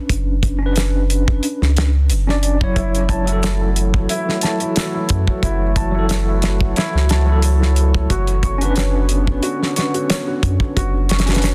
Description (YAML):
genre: trip hop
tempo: 90 BPM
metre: 4/4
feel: swing 54% on 16ths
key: F# minor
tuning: A4 = 440 Hz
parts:
  - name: tine electric piano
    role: accompaniment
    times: 0.0-11.5 s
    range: F#3 to D5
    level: -25 LUFS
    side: equal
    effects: tremolo, tape echo
  - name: soft dub sub bass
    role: bass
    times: 0.1-11.5 s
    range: F#1 to F#2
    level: -20 LUFS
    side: equal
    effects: none
  - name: damped 70s drum kit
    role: drums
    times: 0.1-11.5 s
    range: hi-hat, kick drum, snare drum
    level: -22 LUFS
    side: equal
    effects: studio reverb
  - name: tube shaker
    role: percussion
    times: 0.8-11.5 s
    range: none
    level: -37 LUFS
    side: equal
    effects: none
  - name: warbly tape-like pad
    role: sustained chords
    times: 3.6-11.5 s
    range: D3 to C#5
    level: -30 LUFS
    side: equal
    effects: chorus, built-in reverb
  - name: felt-muted upright piano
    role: arpeggios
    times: 2.8-11.5 s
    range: E4 to C#6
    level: -28 LUFS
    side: equal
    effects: delay
room: small room ambience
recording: dense, heavily limited modern master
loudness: -18 LUFS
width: mono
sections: 0.0-11.5 A section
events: none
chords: 0.0 Bmadd9/F#; 2.8 F#m7; 8.1 Bmadd9/F#